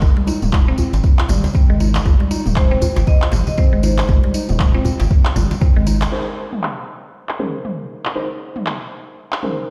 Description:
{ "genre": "afro house", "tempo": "118 BPM", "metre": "4/4", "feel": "swing 59% on 16ths", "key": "Bb dorian", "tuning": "A4 = 439 Hz", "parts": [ { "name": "marimba with hard mallets", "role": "melody", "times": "0.0-5.3 s", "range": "Bb4 to Eb5", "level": "-29 LUFS", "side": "equal", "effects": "digital delay" }, { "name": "mallet-like synth pluck", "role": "arpeggios", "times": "0.0-6.0 s", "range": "G3 to Eb4", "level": "-26 LUFS", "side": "equal", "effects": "chorus, sidechain pumping, digital delay" }, { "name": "round analog bass", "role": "bass", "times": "0.0-6.1 s", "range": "Eb1 to Ab1", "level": "-20 LUFS", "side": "equal", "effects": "sidechain pumping" }, { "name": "electronic kick drum", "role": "drums", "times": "0.0-5.7 s", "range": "none", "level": "-16 LUFS", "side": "equal", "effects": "overdrive" }, { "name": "congas", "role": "percussion", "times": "0.0-6.1 s", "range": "none", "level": "-28 LUFS", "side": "equal", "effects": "none" }, { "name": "djembe", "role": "percussion", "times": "0.0-6.0 s", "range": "none", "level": "-27 LUFS", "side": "equal", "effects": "none" }, { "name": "tambourine", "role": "percussion", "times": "0.0-6.1 s", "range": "none", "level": "-36 LUFS", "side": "equal", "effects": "none" }, { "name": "deep house drum kit", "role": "drums", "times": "0.4-9.5 s", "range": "handclaps, toms", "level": "-27 LUFS", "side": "equal", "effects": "overdrive, low-pass filter on toms, low-pass filter on snare" }, { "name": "deep mellow chord stab", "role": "stabs", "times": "6.1-9.7 s", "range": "Db4 to C5", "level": "-29 LUFS", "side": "equal", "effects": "chorus, vintage 12-bit sampler grit, sidechain pumping, digital delay" } ], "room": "light reverb", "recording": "played on a big sound system in a bare room, stone room reverb", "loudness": "-17 LUFS", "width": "mono", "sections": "0.0-6.1 A section; 6.1-9.7 B section", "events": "band accent 6.0", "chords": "0.0 Abmaj7; 6.1 Bbm11" }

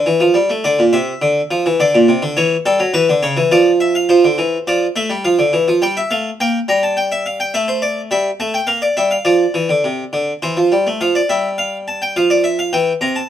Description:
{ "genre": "classical, baroque-style two-part invention for harpsichord", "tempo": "104 BPM", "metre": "3/4", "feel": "straight", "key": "D minor, F major from 7.5 s", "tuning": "A4 = 439 Hz", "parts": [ { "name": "harpsichord", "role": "solo", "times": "0.0-13.3 s", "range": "Bb2 to Bb5", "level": "-13 LUFS", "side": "equal", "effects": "none" } ], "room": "light reverb", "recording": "minimal, uncompressed stereo recording", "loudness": "-13 LUFS", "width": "side -10 dB against mid", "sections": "0.7-4.1 A section; 4.1-11.0 B section; 11.0-13.3 A section", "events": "none", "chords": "0.0 A; 0.7 Dm; 1.8 Bbadd9; 2.4 C#dim/E; 3.5 Dm/F; 4.1 F; 5.2 Dm; 5.8 Gm; 7.0 Em/G; 7.5 A5; 8.7 Bb; 9.3 F5; 10.4 C/E; 11.0 F; 12.2 Dmadd9/F; 12.7 Edim" }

